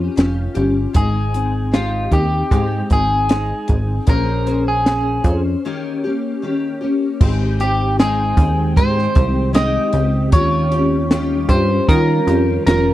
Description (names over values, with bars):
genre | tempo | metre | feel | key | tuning
indie pop, bedroom pop | 77 BPM | 4/4 | straight | Ab major | A4 = 441 Hz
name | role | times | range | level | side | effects
electric guitar at the edge of break-up | melody | 0.0-12.9 s | F4 to Eb5 | -20 LUFS | equal | lush chorus, slapback echo
picked steel-string acoustic guitar | accompaniment | 0.0-12.9 s | Eb3 to C5 | -21 LUFS | left 3 dB | ensemble chorus, warbly pitch drift
plucky analog bass | bass | 0.0-12.9 s | F1 to Eb3 | -19 LUFS | equal | none
compact cocktail drum kit | drums | 0.2-12.9 s | crash cymbal, hi-hat, kick drum, snare drum | -15 LUFS | equal | none
ethereal airy pad | sustained chords | 8.2-12.9 s | Eb3 to G5 | -26 LUFS | right 1 dB | ensemble chorus, built-in reverb
room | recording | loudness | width
little or no reverb | dry, close 1970s-style studio recording | -14 LUFS | side -14 dB against mid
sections
0.0-7.2 A section; 7.2-12.9 B section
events
break 5.6-7.2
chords
0.0 Eb9; 0.9 Abmaj7; 4.1 Bbm9; 5.6 Eb7; 7.2 Abmaj7; 10.3 Eb9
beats
0.17 | 0.95 1.73 2.51 3.29 | 4.08 4.86 5.64 6.42 | 7.20 7.98 8.77 9.55 | 10.33 11.11 11.89 12.67